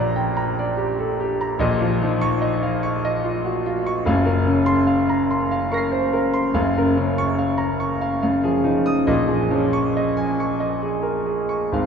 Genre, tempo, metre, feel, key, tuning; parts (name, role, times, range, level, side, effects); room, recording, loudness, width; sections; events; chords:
classical, impressionist solo piano; 63-75 BPM; 3/4; rubato; A4 = 439 Hz
clear concert grand piano; solo; 0.0-11.9 s; Gb1 to C7; -18 LUFS; equal
wet cathedral reverb, RT60 4.6 s; recorded in a church or concert hall; -18 LUFS; side -6 dB against mid
0.0-11.9 A section
0.0 A#6; 1.6 C#69/A#; 4.0 Gbmaj7#11; 6.5 Bbm/Gb; 8.2 Fm7/Gb; 9.1 Bbm7